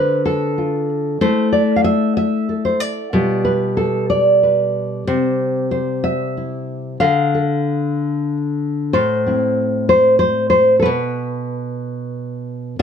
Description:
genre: folk, solo fingerstyle acoustic guitar.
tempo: 62 BPM (dotted quarters).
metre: 6/8.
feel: straight.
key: unclear.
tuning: A4 = 438 Hz.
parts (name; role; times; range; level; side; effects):
nylon-string guitar; solo; 0.0-12.8 s; A2 to F5; -15 LUFS; left 1 dB; none.
room: light reverb.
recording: close, detailed microphones.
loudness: -15 LUFS.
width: side -7 dB against mid.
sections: 0.0-12.8 A section.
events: none.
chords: 0.0 Dm; 1.2 A5; 3.1 G7/B; 5.1 C; 7.0 Dm; 8.9 Am; 10.9 N.C..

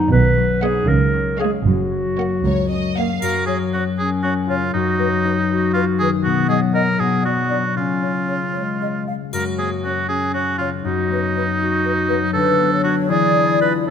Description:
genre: cinematic, playful, whimsical film cue.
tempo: 79 BPM (dotted quarters).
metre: 6/8.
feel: straight.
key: F# major.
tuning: A4 = 440 Hz.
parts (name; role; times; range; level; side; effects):
dark studio violin section; melody; 0.0-3.2 s; E#5 to F#5; -34 LUFS; left 1 dB; none.
dark studio violin section; second line; 0.0-3.2 s; C#5 to E#5; -28 LUFS; left 2 dB; none.
warm clarinet; second line; 0.0-13.9 s; G#3 to B4; -24 LUFS; equal; none.
warm studio viola section; accompaniment; 0.0-3.2 s; G#3 to B3; -27 LUFS; right 4 dB; none.
concert harp; arpeggios; 0.0-13.9 s; F#2 to B4; -21 LUFS; left 7 dB; none.
dark studio cello section; bass; 0.1-3.1 s; C#2 to C#3; -22 LUFS; right 3 dB; none.
dark studio double bass section; bass; 0.1-3.1 s; F#1 to C#2; -21 LUFS; right 4 dB; none.
warm oboe; second line; 3.2-13.9 s; D#4 to B4; -21 LUFS; right 3 dB; none.
triangle; percussion; 3.2-4.2, 9.3-10.3 s; none; -37 LUFS; left 2 dB; none.
mellow hollow flute section; second line; 3.5-13.9 s; B4 to E#5; -25 LUFS; left 2 dB; none.
room: moderate scoring stage reverb, RT60 1.6 s.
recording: none.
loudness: -16 LUFS.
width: side -8 dB against mid.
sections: 0.0-3.2 A section; 3.2-13.9 A section.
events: none.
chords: 0.1 B; 0.9 C#; 1.7 F#; 4.7 B/F#; 6.2 B; 7.0 Bm; 7.8 C#; 9.3 F#; 10.8 B/F#; 12.3 Bm7/D; 13.1 E7b9.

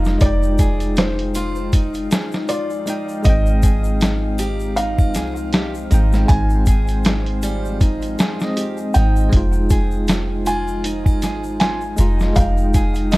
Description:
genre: trip hop.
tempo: 79 BPM.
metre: 4/4.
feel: swing 57% on 16ths.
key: F minor.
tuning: A4 = 440 Hz.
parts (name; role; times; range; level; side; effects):
felt-muted upright piano; melody; 0.0-13.2 s; C5 to Ab5; -26 LUFS; equal; tape echo.
bell-like tine electric piano; accompaniment; 0.0-13.2 s; Ab3 to G5; -25 LUFS; equal; tremolo.
deep dark ambient pad; sustained chords; 0.0-13.2 s; F3 to G5; -30 LUFS; left 2 dB; chorus, built-in reverb, vintage 12-bit sampler grit.
nylon-string guitar; arpeggios; 0.0-13.2 s; G3 to Ab4; -29 LUFS; right 1 dB; tape echo.
soft 808-style bass; bass; 0.0-13.2 s; F1 to C2; -19 LUFS; equal; none.
egg shaker and triangle; percussion; 0.0-13.2 s; none; -38 LUFS; left 4 dB; none.
dusty soul sampler-style drum kit; drums; 0.1-13.2 s; hi-hat, kick drum, snare drum; -18 LUFS; equal; studio reverb.
room: digital ambience.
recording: dark, warm production.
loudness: -16 LUFS.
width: side -20 dB against mid.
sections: 0.0-13.2 A section.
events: none.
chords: 0.0 Fm7; 3.3 Abmaj7; 9.3 Fm7.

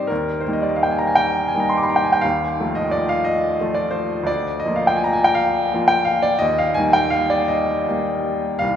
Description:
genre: classical, romantic nocturne for solo piano.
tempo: 53-61 BPM (dotted quarters).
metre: 12/8.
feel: rubato.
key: Eb major.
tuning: A4 = 440 Hz.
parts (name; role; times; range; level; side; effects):
clear upright piano; solo; 0.0-8.8 s; C2 to D6; -17 LUFS; equal; none.
room: wet cathedral reverb, RT60 5.4 s.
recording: recorded in a church or concert hall.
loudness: -17 LUFS.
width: side -9 dB against mid.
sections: 0.0-8.8 A section.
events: none.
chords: 0.1 Eb; 2.2 F7/Eb; 4.3 Bb/D; 6.4 Eb.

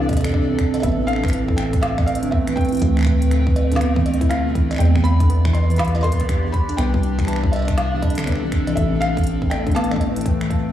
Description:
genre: IDM.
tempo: 121 BPM.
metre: 4/4.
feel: swing 62% on 16ths.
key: unclear.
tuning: A4 = 440 Hz.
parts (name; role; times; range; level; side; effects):
warbly tape-like pad; sustained chords; 0.0-10.7 s; A2 to G5; -23 LUFS; right 2 dB; chorus, built-in reverb, phaser, sidechain pumping.
warbly dusty pluck; arpeggios; 0.0-10.5 s; E2 to E4; -26 LUFS; left 2 dB; chorus, diffuse ambient delay.
deep acid bass; bass; 0.0-10.7 s; A1 to E2; -21 LUFS; equal; none.
electronic kick drum; drums; 0.1-10.6 s; none; -22 LUFS; equal; none.
organic electronic drum kit; drums; 0.1-10.6 s; cowbell, finger snaps, hi-hat, snare drum; -29 LUFS; equal; diffuse ambient delay.
felt-muted upright piano; melody; 0.3-10.7 s; D5 to C6; -28 LUFS; equal; analog chorus, diffuse ambient delay.
room: moderate plate reverb, RT60 2.0 s.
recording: dreamy mix soaked in reverb, small room ambience.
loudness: -16 LUFS.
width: side -11 dB against mid.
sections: 0.0-10.7 A section.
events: none.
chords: 0.0 C5; 0.8 Am7; 2.8 Dm7; 4.8 Em7; 6.8 C6; 8.8 Am7.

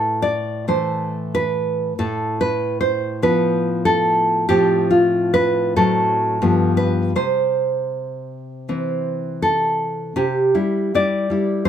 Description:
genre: romantic piece for solo classical guitar.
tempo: 71-97 BPM.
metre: 4/4.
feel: rubato.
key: A minor, C major from 4.5 s.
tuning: A4 = 439 Hz.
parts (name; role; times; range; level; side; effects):
nylon-string guitar; solo; 0.0-11.7 s; G2 to D5; -17 LUFS; equal; none.
room: light reverb.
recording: none.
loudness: -17 LUFS.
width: side -9 dB against mid.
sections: 0.0-10.2 A section; 10.2-11.7 B section.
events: none.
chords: 0.0 Am; 2.0 Amadd9; 4.5 F/A; 5.8 Am6; 6.4 G7; 7.2 C.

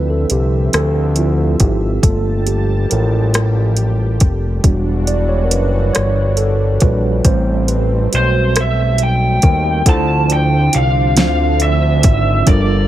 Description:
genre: slow six-eight R&B.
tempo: 46 BPM (dotted quarters).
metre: 6/8.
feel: straight.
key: unclear.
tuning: A4 = 440 Hz.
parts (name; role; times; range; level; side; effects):
mellow tine electric piano; accompaniment; 0.0-12.9 s; D3 to D5; -19 LUFS; right 3 dB; medium stereo tremolo.
lush unison pad; sustained chords; 0.0-12.9 s; D3 to A5; -26 LUFS; left 1 dB; chorus.
fat analog bass; bass; 0.0-12.9 s; E1 to Eb2; -15 LUFS; equal; none.
smooth R&B drum kit; drums; 0.3-12.7 s; hi-hat, kick drum, rim click, snare drum; -14 LUFS; equal; overdrive.
lead guitar through a small cranked amp; melody; 8.2-12.9 s; C5 to A5; -17 LUFS; right 1 dB; overdrive.
room: little or no reverb.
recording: none.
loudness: -12 LUFS.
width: side -13 dB against mid.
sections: 0.0-9.9 A section; 9.9-12.9 B section.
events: tine electric piano solo 0.0-9.9.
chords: 0.0 Dm9; 2.0 Gm9; 4.6 Em9; 7.2 Am9; 9.9 Dm9.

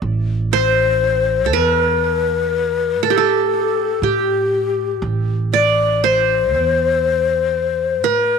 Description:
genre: arabic.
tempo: 120 BPM (eighths).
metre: 10/8.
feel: straight.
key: A maqam bayati.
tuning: A4 = 439 Hz.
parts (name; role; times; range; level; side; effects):
upright bass; bass; 0.0-8.4 s; A1 to A2; -23 LUFS; right 3 dB; none.
breathy mellow ney; melody; 0.5-8.4 s; G4 to D5; -17 LUFS; left 8 dB; none.
qanun; second line; 0.5-8.4 s; G4 to D5; -19 LUFS; right 15 dB; tape echo.
room: light reverb, small room reverb.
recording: 1960s-style stereo with parts hard left and right.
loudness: -15 LUFS.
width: side -6 dB against mid.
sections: 0.0-8.4 A section.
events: none.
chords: none.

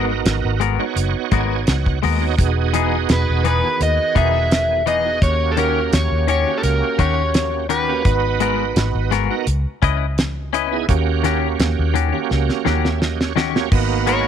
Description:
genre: straight-eighth soul blues.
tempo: 85 BPM.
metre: 4/4.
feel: swing 53% on 16ths.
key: G# minor.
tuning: A4 = 440 Hz.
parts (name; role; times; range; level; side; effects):
bright tonewheel organ; accompaniment; 0.0-14.3 s; D#3 to G#5; -23 LUFS; right 14 dB; slow rotary speaker, overdrive, chorus vibrato.
clean electric guitar; stabs; 0.0-14.3 s; D#3 to D#5; -22 LUFS; left 14 dB; slapback echo.
vintage muted fingered electric bass; bass; 0.0-14.3 s; E1 to D#2; -20 LUFS; equal; none.
damped 70s drum kit; drums; 0.3-14.2 s; crash cymbal, hi-hat, kick drum, snare drum; -20 LUFS; equal; none.
overdriven semi-hollow guitar; melody; 3.1-9.1, 14.1-14.3 s; A4 to E5; -20 LUFS; left 1 dB; slapback echo.
brilliant horn section; sustained chords; 13.7-14.3 s; F#5 to B5; -28 LUFS; equal; none.
room: small room ambience.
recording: 1960s-style stereo with parts hard left and right.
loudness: -16 LUFS.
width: side -8 dB against mid.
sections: 0.0-13.7 A section.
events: tonewheel organ fill 1.0-2.4, 12.3-13.7; drum fill 12.3-13.7.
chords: 0.0 G#m9; 2.4 Emaj7; 5.2 D#7#9; 8.1 G#m9; 9.5 C#m9; 10.9 D#7#9; 13.7 G#m9.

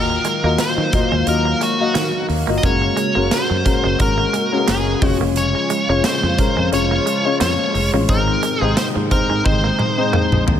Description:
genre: 1980s-style pop.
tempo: 88 BPM.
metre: 4/4.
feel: swing 55% on 16ths.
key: Db major.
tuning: A4 = 437 Hz.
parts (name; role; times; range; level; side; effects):
nasal lead guitar with a parked wah; melody; 0.0-10.4 s; Gb4 to Eb5; -20 LUFS; equal; overdrive, digital delay.
warm baby grand piano; accompaniment; 0.0-10.6 s; Ab2 to F5; -21 LUFS; left 5 dB; none.
sweeping resonant pad; sustained chords; 0.0-10.6 s; C3 to F5; -25 LUFS; right 1 dB; chorus.
mellow fretless electric bass; bass; 0.0-10.6 s; F1 to Eb3; -21 LUFS; equal; none.
direct-recorded clean electric guitar; riff; 0.1-10.5 s; F3 to Bb3; -28 LUFS; right 8 dB; lush chorus.
big rock drum kit; drums; 0.2-10.6 s; hi-hat, kick drum, snare drum, toms; -21 LUFS; right 1 dB; gated reverb.
room: light reverb.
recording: none.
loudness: -15 LUFS.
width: side -9 dB against mid.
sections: 0.0-10.6 A section.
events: drum fill 9.5-10.6.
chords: 0.0 Ebmadd9; 2.6 Gbadd9; 5.0 Db/F; 8.1 Ab.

